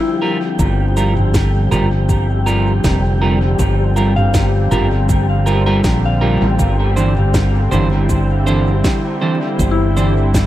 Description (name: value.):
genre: ambient dub.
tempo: 80 BPM.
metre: 4/4.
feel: swing 53% on 16ths.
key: G dorian.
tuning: A4 = 439 Hz.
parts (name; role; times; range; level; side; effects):
warm analog pad; sustained chords; 0.0-10.5 s; D3 to E4; -21 LUFS; left 1 dB; chorus.
soft synth bell; arpeggios; 0.0-10.5 s; E4 to F5; -26 LUFS; left 4 dB; chorus, dub echo.
wind-like tuned noise texture; texture; 0.0-10.5 s; G4 to G5; -25 LUFS; left 2 dB; built-in reverb.
semi-hollow electric guitar; stabs; 0.2-10.1 s; E3 to C5; -20 LUFS; right 3 dB; analog chorus, dub echo.
fingered electric bass; bass; 0.6-10.5 s; F1 to Bb1; -15 LUFS; equal; none.
electronic kick drum; drums; 0.6-10.5 s; none; -19 LUFS; equal; none.
organic electronic drum kit; drums; 0.6-10.5 s; cabasa, snare drum, toms; -25 LUFS; equal; dub echo.
room: light reverb, digital ambience.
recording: vinyl crackle.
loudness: -13 LUFS.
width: side -14 dB against mid.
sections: 0.0-10.5 A section.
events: none.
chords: 0.0 Gm7; 6.6 Cadd9/G.